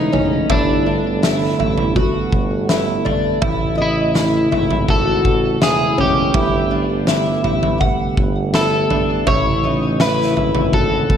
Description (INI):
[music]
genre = dream pop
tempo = 82 BPM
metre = 4/4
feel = straight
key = unclear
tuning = A4 = 439 Hz
[part]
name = electric guitar at the edge of break-up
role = melody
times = 0.0-11.2 s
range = D4 to C#5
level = -20 LUFS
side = left 1 dB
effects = digital delay
[part]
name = mellow tonewheel organ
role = sustained chords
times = 0.0-11.2 s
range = C#3 to A4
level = -22 LUFS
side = right 3 dB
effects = stopped rotary speaker
[part]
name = fingerpicked twelve-string acoustic guitar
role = arpeggios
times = 0.0-11.2 s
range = E3 to F#5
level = -20 LUFS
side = left 2 dB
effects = analog chorus, digital delay
[part]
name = warm tuba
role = bass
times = 0.0-11.2 s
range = E1 to A1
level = -24 LUFS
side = equal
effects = none
[part]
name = oversized low-tuned drum kit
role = drums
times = 0.1-11.2 s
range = kick drum, snare drum, toms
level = -20 LUFS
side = equal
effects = none
[sound]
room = moderate recital hall reverb, RT60 1.7 s, studio ambience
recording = none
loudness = -14 LUFS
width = side -8 dB against mid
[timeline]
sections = 0.0-11.2 A section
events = none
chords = 0.5 Gadd9; 3.4 Amaj7; 6.3 Gadd9; 9.3 Amaj7